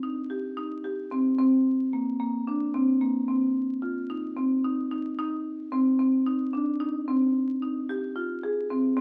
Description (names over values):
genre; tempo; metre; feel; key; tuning
progressive instrumental, progressive; 111 BPM; 7/4; straight; C minor; A4 = 440 Hz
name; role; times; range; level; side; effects
marimba with medium hard mallets; solo; 0.0-9.0 s; Bb3 to Ab4; -27 LUFS; equal; none
room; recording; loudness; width
moderate studio reverb, RT60 0.8 s; very old 78 rpm record, vinyl crackle; -27 LUFS; mono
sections
0.0-9.0 A section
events
none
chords
none